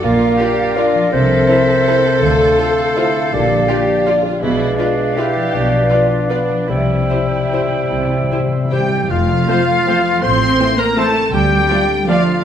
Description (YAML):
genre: classical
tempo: 137-176 BPM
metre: 3/4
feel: rubato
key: F major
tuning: A4 = 440 Hz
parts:
  - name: dark studio violin section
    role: second line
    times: 0.0-12.2 s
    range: C4 to A4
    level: -23 LUFS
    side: left 1 dB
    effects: none
  - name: mellow clarinet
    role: second line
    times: 0.0-12.4 s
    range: F4 to C5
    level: -22 LUFS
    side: equal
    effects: none
  - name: silver concert flute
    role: second line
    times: 0.0-12.4 s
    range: E5 to C6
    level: -23 LUFS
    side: left 1 dB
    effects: none
  - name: warm oboe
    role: second line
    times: 0.0-12.4 s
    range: F4 to E5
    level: -24 LUFS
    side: equal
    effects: none
  - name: mellow bassoon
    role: accompaniment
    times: 0.0-8.9 s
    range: G3 to E4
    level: -18 LUFS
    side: right 1 dB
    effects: none
  - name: concert harp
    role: arpeggios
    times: 0.0-12.4 s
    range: F2 to D5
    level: -22 LUFS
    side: left 7 dB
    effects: none
  - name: warm studio cello section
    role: bass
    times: 0.0-12.4 s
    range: Bb2 to C4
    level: -22 LUFS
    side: right 4 dB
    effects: none
  - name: warm studio double bass section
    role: bass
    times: 0.0-11.6 s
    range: F1 to D2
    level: -23 LUFS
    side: right 3 dB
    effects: none
  - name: rich studio violin section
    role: melody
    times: 0.4-12.4 s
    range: C5 to C6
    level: -23 LUFS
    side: left 4 dB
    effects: none
  - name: warm studio viola section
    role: accompaniment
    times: 0.4-12.2 s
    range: E3 to B4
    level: -27 LUFS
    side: right 1 dB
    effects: none
  - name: mellow French horn section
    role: sustained chords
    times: 0.4-12.2 s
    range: A3 to D5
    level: -25 LUFS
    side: left 3 dB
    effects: none
  - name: timpani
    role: percussion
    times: 6.7-9.1 s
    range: C3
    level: -26 LUFS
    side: left 1 dB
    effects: none
  - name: bright trumpet section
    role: stabs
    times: 9.5-12.2 s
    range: C5 to D5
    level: -24 LUFS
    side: left 1 dB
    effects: none
room: wet recital hall reverb, RT60 1.4 s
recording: none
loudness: -12 LUFS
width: side -9 dB against mid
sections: 0.0-9.1 A section; 9.1-12.4 B section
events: timpani fill 6.7-9.1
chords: 0.0 Bb; 1.1 C7; 2.2 Dm7; 3.3 Gm7/Bb; 4.4 Bdim7; 6.7 C; 9.1 F; 10.2 Am; 11.3 Dm